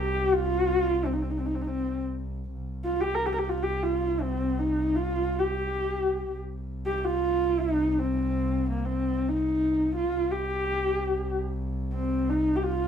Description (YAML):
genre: mongolian traditional, Mongolian folk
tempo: free time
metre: none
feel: none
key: C yu mode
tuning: A4 = 440 Hz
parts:
  - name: dark horsehead fiddle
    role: melody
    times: 0.0-12.9 s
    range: Bb3 to Bb4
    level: -26 LUFS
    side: equal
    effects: none
  - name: warm double bass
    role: drone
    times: 0.0-12.9 s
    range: C2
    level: -31 LUFS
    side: right 1 dB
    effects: none
room: wet studio reverb, RT60 0.8 s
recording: band playing live in one room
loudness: -25 LUFS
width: side -8 dB against mid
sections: 0.0-2.5 A section; 2.5-12.9 A section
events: none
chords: none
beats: free time